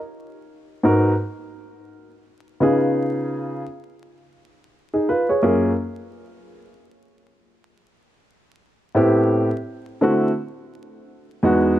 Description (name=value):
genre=hip hop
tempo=85 BPM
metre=4/4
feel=swing 59% on 16ths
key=unclear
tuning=A4 = 438 Hz
part: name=dark upright piano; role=solo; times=0.8-11.8 s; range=E2 to Db5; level=-18 LUFS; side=equal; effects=slapback echo
room=small room ambience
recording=dry, close 1970s-style studio recording, vinyl crackle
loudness=-18 LUFS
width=side -13 dB against mid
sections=0.0-11.8 A section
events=none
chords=0.0 Abm7; 2.6 Db7; 5.4 Gbmaj7; 8.3 Am7; 9.7 D9; 11.1 Emaj9